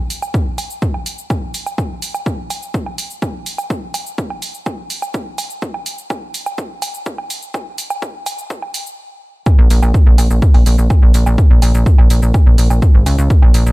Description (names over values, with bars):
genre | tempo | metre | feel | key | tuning
melodic techno | 125 BPM | 4/4 | straight | Bb minor | A4 = 440 Hz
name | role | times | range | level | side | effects
electronic hi-hat, shaker and woodblock | drums | 0.1-13.7 s | none | -24 LUFS | right 2 dB | none
electronic kick drum | drums | 0.3-13.4 s | none | -12 LUFS | equal | none
plucky analog bass | bass | 9.6-13.7 s | Ab1 to Db2 | -12 LUFS | equal | sidechain pumping
room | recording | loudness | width
little or no reverb | dark, warm production, high-pass filter | -12 LUFS | side -22 dB against mid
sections
0.0-9.5 A section; 9.5-13.7 B section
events
build-up 0.0-9.5; filter sweep 0.0-9.5; stop 9.0-9.5; drop 9.5-13.7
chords
none